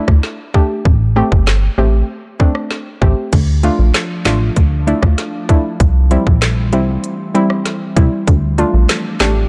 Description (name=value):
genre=dancehall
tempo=97 BPM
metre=4/4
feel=straight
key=D minor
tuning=A4 = 440 Hz
part: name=soft round pluck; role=accompaniment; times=0.0-9.3 s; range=G3 to G4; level=-21 LUFS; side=equal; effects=chorus
part: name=plucky analog bass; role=bass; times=0.1-9.5 s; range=G1 to D2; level=-16 LUFS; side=equal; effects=none
part: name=island pop drum kit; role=drums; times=0.1-9.3 s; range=crash cymbal, handclaps, hi-hat, kick drum, rim click, snare drum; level=-16 LUFS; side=equal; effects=vintage 12-bit sampler grit
part: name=glassy FM pad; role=sustained chords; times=3.8-9.5 s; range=E3 to D4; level=-26 LUFS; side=equal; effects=ensemble chorus, built-in reverb, sidechain pumping
room=light reverb, digital ambience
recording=dark, warm production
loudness=-14 LUFS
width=mono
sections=0.0-3.3 A section; 3.3-9.5 B section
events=none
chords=0.0 D5; 0.9 Am7; 3.3 Dm; 5.8 C; 8.3 Dm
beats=0.23 | 0.85 1.47 2.09 2.71 | 3.33 3.95 4.57 5.18 | 5.80 6.42 7.04 7.66 | 8.28 8.89